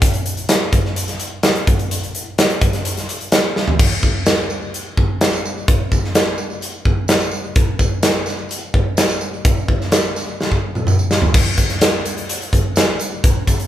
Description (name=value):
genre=rock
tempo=127 BPM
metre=4/4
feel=straight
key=none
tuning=none
part: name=big rock drum kit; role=drums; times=0.0-13.7 s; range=crash cymbal, hi-hat, kick drum, snare drum, toms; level=-15 LUFS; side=equal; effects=none
part: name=tambourine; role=percussion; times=4.0-13.6 s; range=none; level=-31 LUFS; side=right 3 dB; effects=none
room=moderate large studio reverb, RT60 1.1 s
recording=band playing live in one room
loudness=-15 LUFS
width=side -12 dB against mid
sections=0.0-3.8 A section; 3.8-11.3 B section; 11.3-13.7 B section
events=drum fill 3.6, 10.4-11.3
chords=none